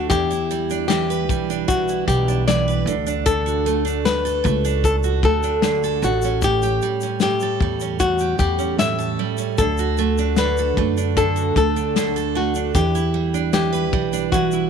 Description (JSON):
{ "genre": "acoustic pop", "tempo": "76 BPM", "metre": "4/4", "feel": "straight", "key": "D major", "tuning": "A4 = 440 Hz", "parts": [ { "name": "flamenco guitar", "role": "melody", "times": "0.0-14.7 s", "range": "F#4 to E5", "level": "-22 LUFS", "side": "left 5 dB", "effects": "none" }, { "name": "picked steel-string acoustic guitar", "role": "accompaniment", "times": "0.0-14.7 s", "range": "A2 to B4", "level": "-23 LUFS", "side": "right 12 dB", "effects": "none" }, { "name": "upright bass", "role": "bass", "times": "0.0-14.7 s", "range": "A1 to F#2", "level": "-24 LUFS", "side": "equal", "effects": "tube saturation" }, { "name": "natural country drum kit", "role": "drums", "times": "0.1-14.7 s", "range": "kick drum, shaker, snare drum", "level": "-24 LUFS", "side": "left 3 dB", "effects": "none" } ], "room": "light reverb", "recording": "1960s-style stereo", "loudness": "-18 LUFS", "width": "side -7 dB against mid", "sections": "0.0-14.7 A section", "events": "none", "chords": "0.1 Em7; 2.9 D; 6.0 A7; 9.6 D; 12.7 Em7" }